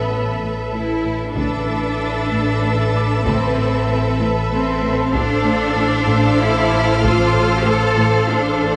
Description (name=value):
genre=cinematic, suspense film score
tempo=95 BPM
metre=3/4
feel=straight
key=A minor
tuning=A4 = 441 Hz
part: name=rich studio violin section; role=melody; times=0.0-8.8 s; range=E5 to F5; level=-32 LUFS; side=equal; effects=none
part: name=rich studio violin section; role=second line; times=0.0-8.8 s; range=B4 to C5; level=-27 LUFS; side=equal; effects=none
part: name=rich studio viola section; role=accompaniment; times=0.0-8.8 s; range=A4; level=-26 LUFS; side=equal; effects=none
part: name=rich studio cello section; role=bass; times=0.0-8.8 s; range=B3 to A4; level=-23 LUFS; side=equal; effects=none
part: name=rich studio double bass section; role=bass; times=0.0-8.8 s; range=A1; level=-26 LUFS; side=equal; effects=none
part: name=organ-like drone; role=drone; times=0.0-8.8 s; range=A1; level=-28 LUFS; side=equal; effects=ensemble chorus, built-in reverb
part: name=concert harp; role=texture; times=0.0-8.8 s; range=D5 to D6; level=-38 LUFS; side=equal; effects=none
part: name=warm studio cello section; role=riff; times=0.1-8.8 s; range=A2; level=-27 LUFS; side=equal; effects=none
part: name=taiko ensemble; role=drums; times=1.4-7.6 s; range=none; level=-29 LUFS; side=equal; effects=none
part: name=rich studio violin section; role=texture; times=1.4-8.6 s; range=D6 to A6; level=-32 LUFS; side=equal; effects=none
room=wet scoring stage reverb, RT60 1.9 s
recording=nothing above 10.8 kHz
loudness=-18 LUFS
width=mono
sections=0.0-8.8 A section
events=none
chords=0.0 Amadd9; 5.1 Dm7/A